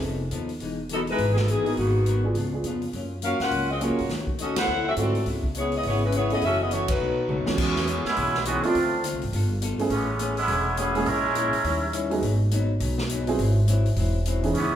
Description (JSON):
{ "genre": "jazz, big band swing", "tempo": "206 BPM", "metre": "4/4", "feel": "swing 61% on 8ths", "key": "C# minor", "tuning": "A4 = 442 Hz", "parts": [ { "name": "mellow saxophone section", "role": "melody", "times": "0.0-7.4 s", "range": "D#3 to F#5", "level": "-26 LUFS", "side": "left 2 dB", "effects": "none" }, { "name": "archtop guitar, miked and amplified", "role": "accompaniment", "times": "0.0-14.8 s", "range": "F#2 to B4", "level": "-31 LUFS", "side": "left 3 dB", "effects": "none" }, { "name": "upright bass", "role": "bass", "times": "0.0-14.8 s", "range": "E1 to G#2", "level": "-27 LUFS", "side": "equal", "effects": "none" }, { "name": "swinging big-band drum kit", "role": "drums", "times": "0.0-14.6 s", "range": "crash cymbal, hi-hat, kick drum, ride cymbal, snare drum, toms", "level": "-33 LUFS", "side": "equal", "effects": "none" }, { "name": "warm grand piano", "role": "accompaniment", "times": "1.6-14.5 s", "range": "E2 to A#4", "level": "-28 LUFS", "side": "right 2 dB", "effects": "none" }, { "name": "muted trombone section", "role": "second line", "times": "7.6-11.9, 14.5-14.8 s", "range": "D#3 to A#4", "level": "-26 LUFS", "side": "right 3 dB", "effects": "none" } ], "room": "wet large studio reverb, RT60 1.3 s", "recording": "heard from further back in the room", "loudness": "-22 LUFS", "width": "side -10 dB against mid", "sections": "0.0-7.6 A section; 7.6-14.8 B section", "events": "band accent 4.5, 6.9; drum fill 7.3; trombone section solo 7.6-14.8", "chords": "0.0 F7#11; 0.6 Emaj7; 1.8 G#m9; 2.3 C#7b9; 2.9 F#maj7; 4.1 D#m7b5; 4.7 D9; 5.3 C#m7; 6.4 F#m7; 7.0 B7; 7.6 E6; 8.7 Dm7; 9.3 G9; 9.9 Amaj9; 11.1 A#m7b5; 11.6 D#7b9; 12.2 G#m7; 13.4 G#7b13" }